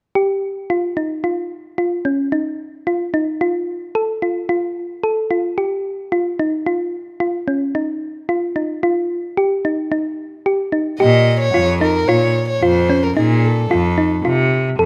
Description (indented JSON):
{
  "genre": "contemporary instrumental, chamber music in an uneven meter",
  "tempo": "111 BPM",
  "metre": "5/4",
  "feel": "straight",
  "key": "Bb dorian",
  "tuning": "A4 = 440 Hz",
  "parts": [
    { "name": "thumb-piano-like synth pluck", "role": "arpeggios", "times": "0.2-14.9 s", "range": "Db4 to A4", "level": "-20 LUFS", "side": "equal", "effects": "chorus" },
    { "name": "dark violin", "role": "melody", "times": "11.0-14.3 s", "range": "Ab4 to Eb5", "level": "-21 LUFS", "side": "equal", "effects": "none" },
    { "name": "rich cello", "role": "bass", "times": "11.0-14.9 s", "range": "F2 to C3", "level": "-19 LUFS", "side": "equal", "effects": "none" }
  ],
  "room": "light reverb",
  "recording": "close, detailed microphones",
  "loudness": "-19 LUFS",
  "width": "mono",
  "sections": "0.2-11.0 A section; 11.0-14.9 B section",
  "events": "none",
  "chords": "0.2 Dbadd9 (rootless); 2.9 F; 5.6 Ebadd9; 11.0 Bbm; 13.7 F"
}